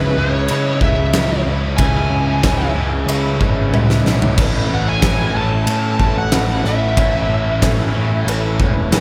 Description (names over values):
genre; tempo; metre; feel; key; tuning
classic rock; 92 BPM; 4/4; straight; unclear; A4 = 438 Hz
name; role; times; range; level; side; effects
smooth overdriven lead guitar; melody; 0.0-9.0 s; B4 to A5; -25 LUFS; equal; slapback echo, tape echo
tack piano; accompaniment; 0.0-9.0 s; C#4 to E5; -32 LUFS; equal; none
tonewheel organ; sustained chords; 0.0-9.0 s; G#3 to B4; -35 LUFS; equal; none
distorted electric guitar; riff; 0.0-9.0 s; A2 to E4; -27 LUFS; equal; distortion
raw garage guitar; riff; 0.0-9.0 s; A2 to E4; -27 LUFS; equal; overdrive, phaser, slapback echo
growling picked electric bass; bass; 0.0-9.0 s; E1 to C#3; -22 LUFS; equal; overdrive
huge arena drum kit; drums; 0.5-9.0 s; crash cymbal, kick drum, ride cymbal, snare drum, toms; -20 LUFS; equal; none
room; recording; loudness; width
moderate lush hall reverb, RT60 2.8 s; big arena sound; -16 LUFS; mono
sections
0.0-9.0 A section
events
drum fill 3.7-4.4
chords
0.0 C#m7; 4.4 Aadd9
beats
0.48 1.13 | 1.78 2.43 3.08 3.73 | 4.37 5.02 5.67 6.32 | 6.97 7.62 8.27 8.92